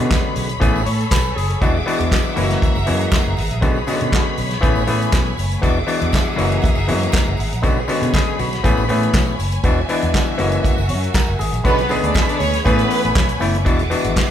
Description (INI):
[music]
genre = disco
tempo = 120 BPM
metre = 4/4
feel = straight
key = B dorian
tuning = A4 = 444 Hz
[part]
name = auto-wah clav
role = accompaniment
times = 0.0-14.3 s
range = C#3 to C#5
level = -21 LUFS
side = left 2 dB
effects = overdrive
[part]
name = clear symphonic string section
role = sustained chords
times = 0.0-14.3 s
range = A3 to D6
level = -25 LUFS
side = left 1 dB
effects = none
[part]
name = fingered electric bass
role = bass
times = 0.0-14.1 s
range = E1 to B2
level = -22 LUFS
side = right 1 dB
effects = none
[part]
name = warm soul drum kit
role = drums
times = 0.1-14.3 s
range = handclaps, hi-hat, kick drum, snare drum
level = -19 LUFS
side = equal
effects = none
[part]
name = tambourine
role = percussion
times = 0.1-14.3 s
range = none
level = -38 LUFS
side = right 5 dB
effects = none
[part]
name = warm studio violin section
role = second line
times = 11.6-13.4 s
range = B3 to E5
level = -20 LUFS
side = right 2 dB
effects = none
[sound]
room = moderate large studio reverb, RT60 1.2 s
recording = band playing live in one room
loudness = -15 LUFS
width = side -10 dB against mid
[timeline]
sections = 0.0-11.7 A section; 11.7-14.3 B section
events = none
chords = 0.0 Bm69; 0.6 Amaj9; 1.6 E9; 2.4 F#9; 3.6 Bm69; 4.6 Amaj9; 5.6 E9; 6.4 F#9; 7.6 Bm69; 8.6 Amaj9; 9.6 E9; 10.4 F#9; 11.7 Bm69; 12.7 Amaj9; 13.7 E9